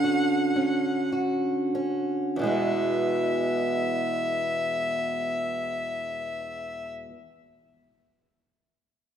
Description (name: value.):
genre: celtic folk, Celtic slow air.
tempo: 46-60 BPM.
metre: 3/4.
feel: rubato.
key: E mixolydian.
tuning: A4 = 436 Hz.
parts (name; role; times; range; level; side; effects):
rich fiddle; melody; 0.0-6.9 s; E5 to F#5; -29 LUFS; left 2 dB; none.
picked steel-string acoustic guitar; accompaniment; 0.0-7.2 s; E2 to F#4; -26 LUFS; right 1 dB; none.
room: moderate scoring stage reverb, RT60 2.1 s.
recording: recorded in a church or concert hall.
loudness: -24 LUFS.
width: side -9 dB against mid.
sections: 0.0-2.4 A section; 2.4-6.1 B section.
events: slowing down 0.0-2.4.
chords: 0.0 Dmaj7; 2.4 Eadd9.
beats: 0.02 1.12 | 2.38 3.65 4.89.